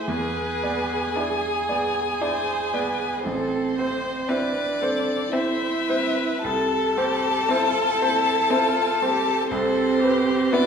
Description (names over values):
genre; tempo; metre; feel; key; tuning
classical, slow romantic movement for piano quintet; 57 BPM; 3/4; uneven beats, rubato; A minor; A4 = 440 Hz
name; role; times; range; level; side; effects
rich violin; melody; 0.0-10.7 s; C5 to A5; -25 LUFS; left 6 dB; none
rich cello; second line; 0.0-10.7 s; C4 to A4; -26 LUFS; right 5 dB; none
bright baby grand piano; accompaniment; 0.0-10.7 s; A1 to E5; -27 LUFS; right 1 dB; none
clear viola; accompaniment; 0.0-10.7 s; E4 to C5; -29 LUFS; right 1 dB; none
rich violin; second line; 1.2-10.7 s; B3 to D4; -30 LUFS; left 2 dB; none
room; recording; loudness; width
wet recital hall reverb, RT60 1.5 s; recorded in a church or concert hall; -20 LUFS; side -6 dB against mid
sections
0.0-10.7 A section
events
none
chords
0.1 E7; 3.3 Am; 6.4 Am/C; 9.5 Cmaj7(no3)